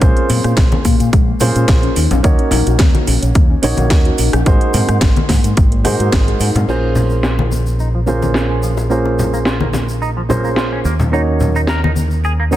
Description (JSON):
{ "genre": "nu-disco, nu disco", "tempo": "108 BPM", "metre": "4/4", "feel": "swing 54% on 16ths", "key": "Bb minor", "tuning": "A4 = 440 Hz", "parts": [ { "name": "dark baby grand piano", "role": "accompaniment", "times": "0.0-12.6 s", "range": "Bb3 to Db5", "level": "-20 LUFS", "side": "right 3 dB", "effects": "dub echo" }, { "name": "soft round pluck", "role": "arpeggios", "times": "0.0-6.6 s", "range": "Ab3 to Bb4", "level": "-22 LUFS", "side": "left 6 dB", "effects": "analog chorus, sidechain pumping, digital delay" }, { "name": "fingered electric bass with an envelope filter", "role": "bass", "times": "0.0-12.6 s", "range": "Ab1 to Bb2", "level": "-17 LUFS", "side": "equal", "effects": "sidechain pumping" }, { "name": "electronic kick drum", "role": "drums", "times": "0.0-6.2 s", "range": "none", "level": "-12 LUFS", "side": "equal", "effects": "small room ambience" }, { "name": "house drum kit", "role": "drums", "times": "0.0-11.8 s", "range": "crash cymbal, hi-hat, rim click, snare drum", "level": "-21 LUFS", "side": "right 1 dB", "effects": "low-pass filter on snare, small room ambience, low-pass filter on hats, low-pass filter on cymbals" }, { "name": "egg shaker, congas and bongos", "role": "percussion", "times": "0.0-12.6 s", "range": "none", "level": "-22 LUFS", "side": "left 2 dB", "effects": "none" }, { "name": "clean electric guitar", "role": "riff", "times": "6.7-12.6 s", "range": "F3 to Bb4", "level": "-24 LUFS", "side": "right 1 dB", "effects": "wide subtle chorus, low-pass filter, dub echo" } ], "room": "light reverb, digital ambience", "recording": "dense, heavily limited modern master", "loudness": "-12 LUFS", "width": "side -13 dB against mid", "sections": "0.0-6.7 A section; 6.7-12.6 B section", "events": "filter sweep on clean electric guitar 6.7-12.6", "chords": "0.0 Bbm9; 2.0 Ebm7; 4.5 Ab9; 6.7 Bbm9; 10.9 Ebm7", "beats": "| 0.02 0.57 1.13 1.69 | 2.24 2.80 3.35 3.91 | 4.46 5.02 5.57 6.13 | 6.69 7.24 7.80 8.35 | 8.91 9.46 10.02 10.57 | 11.13 11.69 12.24" }